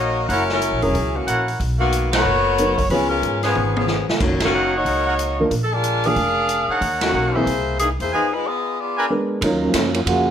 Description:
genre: jazz, big band swing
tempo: 184 BPM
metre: 4/4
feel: swing 62% on 8ths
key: Eb minor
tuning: A4 = 436 Hz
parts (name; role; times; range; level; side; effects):
- warm saxophone section; melody; 0.0-9.1 s; D#3 to F5; -20 LUFS; left 2 dB; none
- clear trumpet section; stabs; 0.0-9.1 s; B3 to Ab5; -23 LUFS; right 1 dB; none
- upright bass; bass; 0.0-10.3 s; Fb1 to Ab2; -25 LUFS; equal; none
- swinging big-band drum kit; drums; 0.3-10.2 s; crash cymbal, hi-hat, kick drum, ride cymbal, snare drum, toms; -25 LUFS; equal; none
- warm grand piano; accompaniment; 0.8-9.9 s; Eb3 to Bb4; -22 LUFS; right 1 dB; none
- dark trombone section; second line; 9.6-10.3 s; Db3 to Gb4; -18 LUFS; right 2 dB; none
room: moderate large studio reverb, RT60 1.0 s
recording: none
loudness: -17 LUFS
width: side -9 dB against mid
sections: 0.0-9.4 A section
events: band accent 2.1, 4.4, 7.0; drum fill 3.6-4.2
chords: 0.3 Gb7; 1.6 Bmaj7; 2.9 Db7; 4.2 Gb6; 5.5 Bb7; 6.8 Ebm7; 7.5 C7b13; 8.1 Fm7b5; 8.8 Bb7b9; 9.4 Ebm9

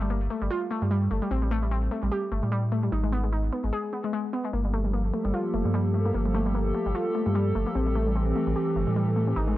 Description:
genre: IDM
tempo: 149 BPM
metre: 4/4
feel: swing 56% on 16ths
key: A phrygian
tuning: A4 = 444 Hz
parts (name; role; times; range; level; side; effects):
- warbly dusty pluck; arpeggios; 0.0-9.5 s; G3 to G#4; -28 LUFS; left 1 dB; chorus, cassette tape, analog delay
- warm sub bass; bass; 0.0-9.6 s; F1 to A2; -27 LUFS; equal; none
- hollow soft pad; sustained chords; 4.5-9.6 s; E3 to A4; -28 LUFS; right 1 dB; chorus
room: little or no reverb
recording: dry, gritty hardware recording, transformer saturation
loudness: -24 LUFS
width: side -15 dB against mid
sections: 0.0-9.6 A section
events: break 3.7-4.5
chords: 0.0 Gsus2; 1.3 A7(no3); 2.9 G#m; 4.5 Gm9; 7.8 Am7

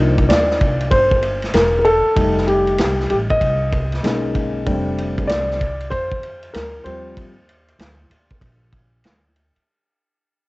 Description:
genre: hip hop, jazz-hop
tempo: 96 BPM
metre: 4/4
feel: swing 64% on 16ths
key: unclear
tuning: A4 = 440 Hz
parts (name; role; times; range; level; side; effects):
- dark baby grand piano; accompaniment; 0.0-9.3 s; F3 to Eb5; -18 LUFS; left 1 dB; cassette tape
- upright bass; bass; 0.0-9.6 s; E1 to F2; -23 LUFS; equal; none
- vintage drum kit; drums; 0.2-9.7 s; hi-hat, kick drum, ride cymbal, snare drum; -22 LUFS; equal; none
room: little or no reverb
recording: home recording on cassette, nothing above 8.0 kHz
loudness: -15 LUFS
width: side -22 dB against mid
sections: 0.0-9.7 A section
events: fade-out 0.0-9.7; grand piano solo 0.0-9.7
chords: 0.0 Cm11; 2.2 F9; 4.0 Bmaj13; 4.7 F69; 6.9 Eb6

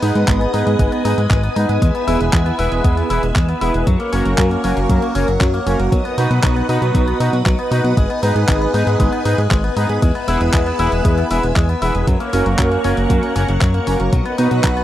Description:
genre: italo disco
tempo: 117 BPM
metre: 4/4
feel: straight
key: G# minor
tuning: A4 = 441 Hz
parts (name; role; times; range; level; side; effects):
- string machine, full ensemble; sustained chords; 0.0-14.8 s; A#4 to E6; -23 LUFS; left 2 dB; phaser, ensemble chorus
- electric guitar with an envelope filter; arpeggios; 0.0-14.8 s; F#3 to E4; -24 LUFS; left 2 dB; tape echo
- analog synth brass; stabs; 0.0-14.8 s; A#3 to B4; -21 LUFS; right 2 dB; chorus, cassette tape, tape echo
- fat analog bass; bass; 0.0-14.8 s; E1 to B2; -18 LUFS; equal; none
- clean 12-bit digital drum machine; drums; 0.0-14.8 s; handclaps, hi-hat; -25 LUFS; equal; none
- electronic kick drum; drums; 0.3-14.7 s; none; -17 LUFS; equal; none
room: little or no reverb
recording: dry, close 1970s-style studio recording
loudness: -14 LUFS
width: side -13 dB against mid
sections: 0.0-14.8 A section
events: none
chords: 0.0 G#m; 1.8 E; 3.9 F#; 5.9 B; 8.0 G#m; 10.0 E; 12.1 F#; 14.1 B

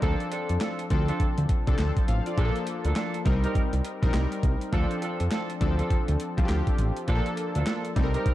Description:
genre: R&B, new jack swing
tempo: 102 BPM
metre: 4/4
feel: swing 61% on 16ths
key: unclear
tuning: A4 = 438 Hz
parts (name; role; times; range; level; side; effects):
- warm analog keys; accompaniment; 0.0-8.3 s; F3 to A5; -30 LUFS; left 2 dB; chorus
- mellow horn section; stabs; 0.0-8.3 s; Bb3 to Bb4; -35 LUFS; right 4 dB; none
- fat analog bass; bass; 0.0-8.3 s; A1 to F2; -26 LUFS; equal; none
- boom bap sampler-style drum kit; drums; 0.0-8.3 s; handclaps, hi-hat, kick drum, snare drum; -27 LUFS; equal; overdrive
room: little or no reverb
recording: dark, warm production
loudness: -24 LUFS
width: side -14 dB against mid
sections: 0.0-8.3 A section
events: none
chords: 0.0 Dm7; 2.4 Bbmaj7; 3.3 Cm7; 4.7 Dm7; 7.1 Bbmaj7

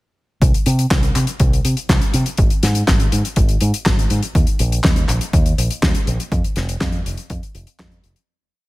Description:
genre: italo disco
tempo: 122 BPM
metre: 4/4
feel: straight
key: unclear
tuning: A4 = 439 Hz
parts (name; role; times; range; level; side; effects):
- fingered electric bass with an envelope filter; bass; 0.4-8.1 s; F1 to C3; -18 LUFS; equal; none
- damped 70s drum kit; drums; 0.4-8.3 s; handclaps, hi-hat, snare drum; -21 LUFS; left 1 dB; studio reverb, gated reverb
- electronic kick drum; drums; 0.4-7.9 s; none; -18 LUFS; equal; studio reverb
room: little or no reverb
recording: none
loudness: -15 LUFS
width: side -19 dB against mid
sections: 0.4-8.3 verse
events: fade-out 5.7-8.3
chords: none

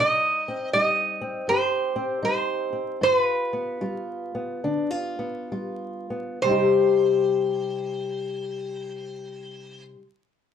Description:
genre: acoustic country blues, solo or duo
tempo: 65-82 BPM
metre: 4/4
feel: swing 64% on 8ths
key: C minor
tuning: A4 = 440 Hz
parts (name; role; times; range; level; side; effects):
- metal-body resonator slide guitar; melody; 0.0-9.8 s; B4 to Eb5; -24 LUFS; right 3 dB; none
- fingerpicked old ladder-braced acoustic guitar; accompaniment; 0.0-10.0 s; G2 to G4; -26 LUFS; left 4 dB; none
room: moderate studio ambience, RT60 0.5 s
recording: heard from further back in the room, vinyl crackle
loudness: -22 LUFS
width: side -8 dB against mid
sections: 0.0-6.4 A section; 6.4-10.1 B section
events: slowing down 0.0-6.4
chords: 0.0 Cm; 3.0 G7; 6.4 Cm

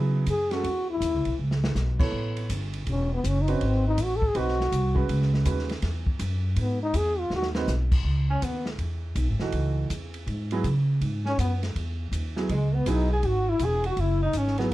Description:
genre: jazz, small-group swing and bop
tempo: 162 BPM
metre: 4/4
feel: swing 64% on 8ths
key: C# minor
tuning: A4 = 441 Hz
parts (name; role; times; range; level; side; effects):
- warm upright piano; accompaniment; 0.0-14.7 s; E3 to C#5; -30 LUFS; right 3 dB; none
- upright bass; bass; 0.0-14.7 s; E1 to C#3; -26 LUFS; equal; none
- warm trombone; melody; 0.3-8.7, 11.3-14.7 s; G#3 to A4; -27 LUFS; left 2 dB; none
- open jazz drum kit; drums; 0.3-14.7 s; crash cymbal, hi-hat, kick drum, ride cymbal, snare drum; -32 LUFS; equal; none
- breathy tenor saxophone; second line; 8.3-8.7, 11.3-14.7 s; G#3 to G#4; -33 LUFS; right 3 dB; none
room: little or no reverb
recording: dark, warm production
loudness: -24 LUFS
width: side -16 dB against mid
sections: 0.0-8.1 A section; 8.1-14.7 B section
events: trombone solo 0.0-8.1; drum fill 1.4-1.8, 7.3-7.7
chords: 0.0 C#m7; 2.1 A7; 3.6 G#7#9; 5.1 C#m7; 6.6 G#m; 8.1 C#m7; 14.0 F#7(no3)

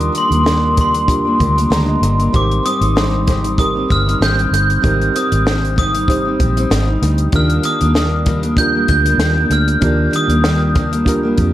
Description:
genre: indie pop, bedroom pop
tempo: 96 BPM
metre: 4/4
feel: swing 55% on 16ths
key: Eb major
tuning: A4 = 441 Hz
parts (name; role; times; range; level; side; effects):
- glockenspiel with hard plastic mallets; melody; 0.0-11.4 s; C6 to G6; -18 LUFS; equal; analog chorus, tape echo
- picked steel-string acoustic guitar; accompaniment; 0.0-11.5 s; Ab2 to Eb4; -20 LUFS; left 1 dB; wide subtle chorus, warbly pitch drift
- reed electric piano; accompaniment; 0.0-11.5 s; C4 to Bb5; -23 LUFS; right 3 dB; cassette tape, tape echo
- vintage muted fingered electric bass; bass; 0.0-11.5 s; G1 to F2; -17 LUFS; equal; none
- compact cocktail drum kit; drums; 0.0-11.5 s; hi-hat, kick drum, snare drum; -19 LUFS; equal; tape echo
room: light reverb, studio ambience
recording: echo-heavy mix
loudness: -12 LUFS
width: side -13 dB against mid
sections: 0.0-11.5 A section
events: reed electric piano fill 1.4-2.3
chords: 0.0 Ebmaj7; 2.3 Abmaj7; 7.3 Ebmaj7

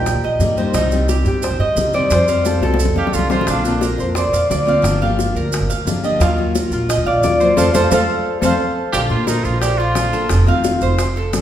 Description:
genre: latin, Cuban son and guajira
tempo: 176 BPM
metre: 4/4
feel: straight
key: Bb major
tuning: A4 = 439 Hz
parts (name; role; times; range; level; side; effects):
- Celtic harp; melody; 0.0-10.6 s; F4 to F5; -20 LUFS; equal; none
- picked steel-string acoustic guitar; accompaniment; 0.0-11.4 s; C3 to G4; -23 LUFS; left 4 dB; none
- Cuban tres; arpeggios; 0.0-11.4 s; Eb4 to F5; -22 LUFS; right 2 dB; none
- upright bass; bass; 0.0-11.4 s; F1 to Bb2; -19 LUFS; right 1 dB; none
- bongos; percussion; 0.1-11.4 s; none; -24 LUFS; left 3 dB; none
- maracas; percussion; 0.1-11.4 s; none; -29 LUFS; right 6 dB; none
- clear trumpet; second line; 3.0-3.9, 8.9-10.5 s; D4 to G4; -23 LUFS; right 2 dB; none
room: wet recital hall reverb, RT60 1.4 s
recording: recorded in a church or concert hall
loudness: -14 LUFS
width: side -11 dB against mid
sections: 0.0-8.9 A section; 8.9-11.4 B section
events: drum fill 2.6-3.5, 7.6-8.9; band accent 7.6-8.9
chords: 0.0 Eb; 0.7 Cm; 2.1 Fadd9; 3.5 Bbadd9; 4.8 Gm7; 6.2 Ebmadd9; 7.6 F; 8.9 Bb; 10.3 F7

